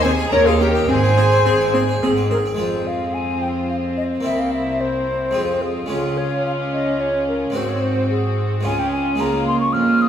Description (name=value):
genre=classical, baroque-style concerto movement with solo episodes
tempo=109 BPM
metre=3/4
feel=straight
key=F minor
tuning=A4 = 440 Hz
part: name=hollow concert flute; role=melody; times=0.0-10.1 s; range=Ab4 to F6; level=-21 LUFS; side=left 1 dB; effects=none
part: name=rich chamber violin section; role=melody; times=0.0-10.1 s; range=Ab4 to Bb5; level=-33 LUFS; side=left 4 dB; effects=none
part: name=clear symphonic violin section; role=second line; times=0.0-10.1 s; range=E4 to Bb4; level=-27 LUFS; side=left 3 dB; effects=none
part: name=harpsichord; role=accompaniment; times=0.0-10.1 s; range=C2 to Db5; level=-25 LUFS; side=right 1 dB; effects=none
part: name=rich studio viola section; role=accompaniment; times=0.0-10.1 s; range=Bb3 to Db4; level=-23 LUFS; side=equal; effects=none
part: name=clear chamber cello section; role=bass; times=0.0-10.1 s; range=C2 to Ab2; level=-24 LUFS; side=right 2 dB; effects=none
part: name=clear chamber double bass section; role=bass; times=0.0-2.5 s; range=Ab1 to Eb2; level=-27 LUFS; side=right 3 dB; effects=none
room=wet recital hall reverb, RT60 1.6 s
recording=recorded in a church or concert hall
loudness=-17 LUFS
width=side -9 dB against mid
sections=0.0-2.6 A section; 2.6-10.1 B section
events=none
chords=0.3 Eb7; 0.9 Ab; 2.6 Fm; 4.3 C7; 5.4 Fm; 5.9 Db; 7.6 Ab7; 8.7 Db; 9.2 Bbm7/Db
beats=0.32 | 0.89 1.46 2.03 | 2.60 3.15 3.71 | 4.26 4.81 5.36 | 5.91 6.46 7.01 | 7.56 8.11 8.65 | 9.20 9.75